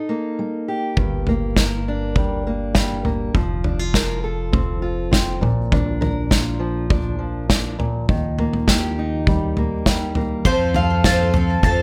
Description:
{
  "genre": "indie folk with a building arrangement",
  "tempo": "101 BPM",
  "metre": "4/4",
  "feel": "straight",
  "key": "unclear",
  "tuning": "A4 = 439 Hz",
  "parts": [
    { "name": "fingerpicked steel-string acoustic guitar", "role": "accompaniment", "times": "0.0-10.5 s", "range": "G2 to Bb4", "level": "-26 LUFS", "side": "equal", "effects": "none" },
    { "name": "upright bass", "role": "bass", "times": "1.0-11.8 s", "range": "F1 to F2", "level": "-27 LUFS", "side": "equal", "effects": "none" },
    { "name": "unplugged drum kit", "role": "drums", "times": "1.0-11.8 s", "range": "kick drum, snare drum, toms", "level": "-22 LUFS", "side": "equal", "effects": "none" },
    { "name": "picked twelve-string acoustic guitar", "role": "accompaniment", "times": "10.4-11.8 s", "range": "F3 to A4", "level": "-23 LUFS", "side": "equal", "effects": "none" },
    { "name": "mandolin", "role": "arpeggios", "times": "10.5-11.8 s", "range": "C5 to A5", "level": "-25 LUFS", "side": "equal", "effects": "digital delay" }
  ],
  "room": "light reverb",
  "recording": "none",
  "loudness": "-20 LUFS",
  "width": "mono",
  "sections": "1.0-10.5 A section; 10.5-11.8 B section",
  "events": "none",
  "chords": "0.0 Eb; 1.0 Gm; 3.3 F; 5.4 Bb; 8.1 Eb; 10.5 F"
}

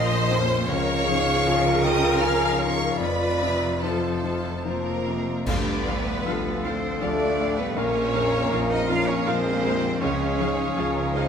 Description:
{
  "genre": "cinematic, emotional film score for orchestra",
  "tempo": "72-81 BPM",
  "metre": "3/4",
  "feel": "rubato",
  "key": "unclear",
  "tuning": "A4 = 440 Hz",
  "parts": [
    { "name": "rich studio violin section", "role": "melody", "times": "0.0-11.3 s", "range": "F4 to E#6", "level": "-32 LUFS", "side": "left 1 dB", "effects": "none" },
    { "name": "concert flute", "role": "second line", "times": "0.0-11.3 s", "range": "C5 to G#5", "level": "-31 LUFS", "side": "left 2 dB", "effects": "none" },
    { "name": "rich studio violin section", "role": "second line", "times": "0.0-11.3 s", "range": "A4 to E#5", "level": "-30 LUFS", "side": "left 1 dB", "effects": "none" },
    { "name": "clear grand piano", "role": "accompaniment", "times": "0.0-11.3 s", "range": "Bb1 to C5", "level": "-30 LUFS", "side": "left 4 dB", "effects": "none" },
    { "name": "warm studio viola section", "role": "accompaniment", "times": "0.0-11.2 s", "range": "Db4 to F5", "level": "-31 LUFS", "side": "equal", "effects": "none" },
    { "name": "mellow French horn section", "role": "sustained chords", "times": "0.0-11.3 s", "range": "F3 to C5", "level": "-30 LUFS", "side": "left 2 dB", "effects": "none" },
    { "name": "concert harp", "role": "arpeggios", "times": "0.0-11.3 s", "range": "F2 to F4", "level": "-33 LUFS", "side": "left 6 dB", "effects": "none" },
    { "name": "clear studio double bass section", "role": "bass", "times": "0.0-11.3 s", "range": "F1 to D2", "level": "-32 LUFS", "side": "right 4 dB", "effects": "none" },
    { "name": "rich symphonic cello section", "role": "bass", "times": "0.0-11.3 s", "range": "D2 to C#3", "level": "-31 LUFS", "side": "right 4 dB", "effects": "none" },
    { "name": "clear cello", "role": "melody", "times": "4.7-11.3 s", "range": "Bb3 to F4", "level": "-29 LUFS", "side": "right 3 dB", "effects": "none" },
    { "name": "dark clarinet", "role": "second line", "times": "5.5-11.3 s", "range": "G#4 to Bb4", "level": "-32 LUFS", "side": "right 2 dB", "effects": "none" },
    { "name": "clash cymbals and concert bass drum", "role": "percussion", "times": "5.5-7.0 s", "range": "none", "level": "-31 LUFS", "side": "right 1 dB", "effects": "none" }
  ],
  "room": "wet recital hall reverb, RT60 1.4 s",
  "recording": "minimal, uncompressed stereo recording",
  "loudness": "-21 LUFS",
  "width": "side -7 dB against mid",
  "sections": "0.0-5.5 A section; 5.5-11.3 B section",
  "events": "band accent 5.5-6.2",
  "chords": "0.0 Bbm; 0.7 C#; 3.0 F; 5.5 Dm; 7.8 Bbm; 10.0 C#"
}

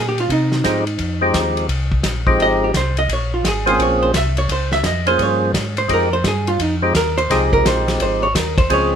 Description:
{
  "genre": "soul jazz organ trio",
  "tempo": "171 BPM",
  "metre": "4/4",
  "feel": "swing 64% on 8ths",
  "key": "F minor",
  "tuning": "A4 = 441 Hz",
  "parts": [
    { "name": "vintage hollow-body jazz guitar", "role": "accompaniment", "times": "0.0-8.9 s", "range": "Eb4 to E5", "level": "-20 LUFS", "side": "right 2 dB", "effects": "none" },
    { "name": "mellow tonewheel organ", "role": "bass", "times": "0.0-9.0 s", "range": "Ab1 to C3", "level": "-22 LUFS", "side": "left 1 dB", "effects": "slow rotary speaker" },
    { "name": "warm soul drum kit", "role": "drums", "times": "0.2-8.8 s", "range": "hi-hat, kick drum, ride cymbal, snare drum", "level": "-22 LUFS", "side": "left 1 dB", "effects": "none" },
    { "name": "percussive tonewheel organ", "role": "melody", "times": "0.6-9.0 s", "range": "F3 to C5", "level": "-17 LUFS", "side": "equal", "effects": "overdrive, slow rotary speaker" }
  ],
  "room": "light reverb",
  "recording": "minimal, uncompressed stereo recording",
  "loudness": "-15 LUFS",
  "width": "side -8 dB against mid",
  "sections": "0.0-9.0 A section",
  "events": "hollow-body jazz guitar solo 0.0-9.0",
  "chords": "0.0 Fm7; 3.1 Bbm7; 5.9 Fm7"
}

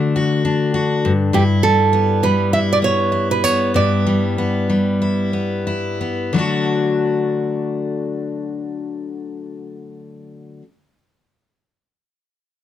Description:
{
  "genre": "acoustic pop",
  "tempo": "86-102 BPM",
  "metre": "4/4",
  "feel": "swing 60% on 16ths",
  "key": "D major",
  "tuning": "A4 = 441 Hz",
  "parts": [
    { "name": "picked steel-string acoustic guitar", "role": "accompaniment", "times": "0.0-10.6 s", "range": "G2 to F#4", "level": "-18 LUFS", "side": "left 2 dB", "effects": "none" },
    { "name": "nylon-string guitar", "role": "melody", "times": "1.3-5.6 s", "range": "G4 to E5", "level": "-18 LUFS", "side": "right 5 dB", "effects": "none" }
  ],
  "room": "light reverb",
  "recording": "close, detailed microphones",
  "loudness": "-16 LUFS",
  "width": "side -11 dB against mid",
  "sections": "0.0-6.3 A section; 6.3-9.1 B section",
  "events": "slowing down 1.3-6.3",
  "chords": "0.0 D; 1.0 G6; 6.3 D"
}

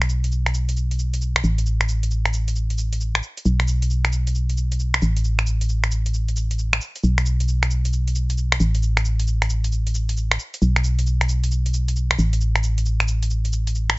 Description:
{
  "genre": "UK garage, two-step garage",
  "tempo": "134 BPM",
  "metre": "4/4",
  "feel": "swing 65% on 16ths",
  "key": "unclear",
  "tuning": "A4 = 442 Hz",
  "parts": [
    { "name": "organ-like FM bass", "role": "bass", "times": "0.0-14.0 s", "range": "A1 to B1", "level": "-20 LUFS", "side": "equal", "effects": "none" },
    { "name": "garage drum kit", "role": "drums", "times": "0.0-14.0 s", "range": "finger snaps, hi-hat, shaker", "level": "-24 LUFS", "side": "equal", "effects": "overdrive" }
  ],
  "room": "little or no reverb",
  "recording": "nothing above 7.7 kHz",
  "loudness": "-19 LUFS",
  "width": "side -23 dB against mid",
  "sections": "0.0-14.0 A section",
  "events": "none",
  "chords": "none"
}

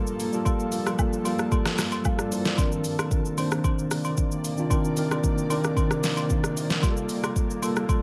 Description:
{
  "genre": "amapiano",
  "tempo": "113 BPM",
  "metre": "4/4",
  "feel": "straight",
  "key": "C minor",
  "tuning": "A4 = 440 Hz",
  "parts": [
    { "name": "mellow tine electric piano", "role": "accompaniment", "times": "0.0-8.0 s", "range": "Eb3 to F5", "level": "-29 LUFS", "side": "equal", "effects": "none" },
    { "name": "granular cloud pad", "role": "sustained chords", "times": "0.0-8.0 s", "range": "G2 to A5", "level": "-36 LUFS", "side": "equal", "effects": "built-in reverb, sidechain pumping" },
    { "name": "deep house drum kit", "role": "drums", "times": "0.1-8.0 s", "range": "hi-hat, kick drum, rim click, shaker, snare drum", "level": "-29 LUFS", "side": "equal", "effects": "none" },
    { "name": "agogo bells and woodblock", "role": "percussion", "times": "0.5-8.0 s", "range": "none", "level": "-39 LUFS", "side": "equal", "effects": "none" }
  ],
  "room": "light reverb, digital ambience",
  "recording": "echo-heavy mix",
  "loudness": "-25 LUFS",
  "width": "mono",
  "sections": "0.0-8.0 A section",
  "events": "none",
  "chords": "0.0 Gm9; 2.6 Cm9; 6.8 Gm9"
}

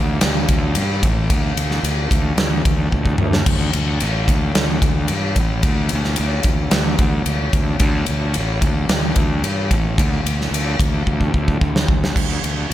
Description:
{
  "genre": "hard rock",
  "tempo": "111 BPM",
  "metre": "4/4",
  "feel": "straight",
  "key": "unclear",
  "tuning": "A4 = 440 Hz",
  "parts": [
    { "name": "fuzz fingered electric bass", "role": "bass", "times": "0.0-12.7 s", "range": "A1 to G2", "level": "-20 LUFS", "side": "equal", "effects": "overdrive" },
    { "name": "big rock drum kit", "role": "drums", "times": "0.2-12.6 s", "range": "crash cymbal, kick drum, ride cymbal, snare drum, toms", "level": "-18 LUFS", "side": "equal", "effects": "none" }
  ],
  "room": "light reverb",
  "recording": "none",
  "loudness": "-16 LUFS",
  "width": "side -13 dB against mid",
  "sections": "0.0-12.2 A section",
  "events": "drum fill 2.9-3.5, 11.1-12.2",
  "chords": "none"
}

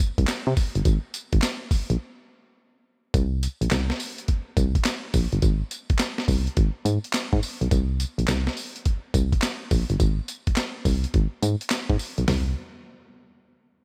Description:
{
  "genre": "R&B, new jack swing",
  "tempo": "105 BPM",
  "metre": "4/4",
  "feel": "swing 65% on 16ths",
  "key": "unclear",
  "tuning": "A4 = 441 Hz",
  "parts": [
    { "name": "boom bap sampler-style drum kit", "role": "drums", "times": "0.0-12.5 s", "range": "handclaps, hi-hat, kick drum, snare drum, tambourine, toms", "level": "-27 LUFS", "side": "equal", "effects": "none" },
    { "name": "solid FM bass", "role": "bass", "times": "0.2-12.5 s", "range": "G1 to C3", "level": "-26 LUFS", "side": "equal", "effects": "none" }
  ],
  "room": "little or no reverb",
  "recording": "bright 1980s-style digital production",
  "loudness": "-25 LUFS",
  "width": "mono",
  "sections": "0.0-3.1 A section; 3.1-12.3 B section; 12.3-13.8 C section",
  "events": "break 2.0-3.1",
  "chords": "none"
}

